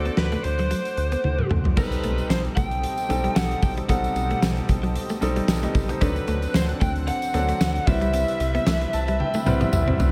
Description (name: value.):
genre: 1980s-style pop.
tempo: 113 BPM.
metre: 4/4.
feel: swing 55% on 16ths.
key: unclear.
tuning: A4 = 440 Hz.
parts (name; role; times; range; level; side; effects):
lead guitar through a small cranked amp; melody; 0.0-10.0 s; A4 to G5; -30 LUFS; equal; overdrive, delay.
clear concert grand piano; accompaniment; 0.0-10.1 s; F#3 to A5; -32 LUFS; equal; none.
lush unison pad; sustained chords; 0.0-10.1 s; B2 to D6; -36 LUFS; equal; chorus.
round analog bass; bass; 0.0-10.1 s; B1 to D2; -28 LUFS; equal; none.
direct-recorded clean electric guitar; riff; 0.1-10.0 s; F#3 to D4; -34 LUFS; equal; subtle chorus.
big rock drum kit; drums; 0.1-10.1 s; crash cymbal, hi-hat, kick drum, snare drum, tambourine, toms; -27 LUFS; equal; none.
tambourine; percussion; 1.8-10.1 s; none; -46 LUFS; equal; none.
room: light reverb, small room ambience.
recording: none.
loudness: -23 LUFS.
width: mono.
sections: 0.0-1.8 A section; 1.8-10.1 B section.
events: drum fill 1.2-1.8, 9.2-10.1; grand piano fill 8.7-10.1.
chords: 0.0 D7; 1.8 B7b9b13; 6.0 D7; 7.9 Cmaj7.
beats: 0.18 0.71 1.24 | 1.77 2.30 2.83 3.36 | 3.89 4.42 4.96 5.49 | 6.02 6.55 7.08 7.61 | 8.14 8.67 9.20 9.73.